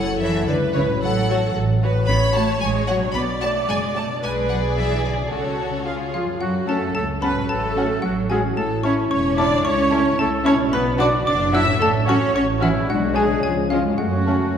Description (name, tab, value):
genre	cinematic, playful, whimsical film cue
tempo	111 BPM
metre	2/4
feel	straight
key	F# minor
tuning	A4 = 441 Hz
part	clear studio violin section	melody	0.0-14.3 s	E#4 to B5	-31 LUFS	left 2 dB	none
part	clear studio viola section	accompaniment	0.0-14.6 s	E4 to E#5	-25 LUFS	right 1 dB	none
part	concert harp	arpeggios	0.0-14.6 s	F#2 to D5	-27 LUFS	left 5 dB	none
part	rich studio cello section	bass	0.0-14.6 s	C#3 to E4	-26 LUFS	right 2 dB	none
part	warm studio double bass section	bass	0.0-14.6 s	E1 to F#2	-25 LUFS	right 3 dB	none
part	rich studio violin section	second line	0.2-14.3 s	G#3 to D5	-28 LUFS	left 2 dB	none
part	xylophone with plastic mallets	melody	6.1-14.6 s	E5 to E6	-27 LUFS	left 2 dB	none
part	clear oboe	second line	6.1-14.6 s	E4 to E5	-28 LUFS	right 2 dB	none
part	mellow hollow concert flute	second line	6.7-14.3 s	E#5 to A5	-33 LUFS	left 1 dB	none
part	warm clarinet	second line	6.7-14.4 s	C#4 to D4	-29 LUFS	right 1 dB	none
part	mellow French horn section	sustained chords	6.7-14.6 s	E#3 to A4	-27 LUFS	left 3 dB	none
room	wet scoring stage reverb, RT60 2.0 s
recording	dark, warm production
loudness	-18 LUFS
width	side -8 dB against mid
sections	0.0-6.4 A section; 6.4-14.6 B section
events	none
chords	0.0 F#m7; 1.0 F#m/A; 3.2 Bm; 4.2 G#dim/B; 5.3 F#m/C#; 5.9 C#; 6.4 F#m; 7.5 F#m/A; 8.6 A; 9.7 A/C#; 10.7 Bm; 11.8 F#m/A; 12.9 G#dim/B; 13.4 C#; 14.0 F#m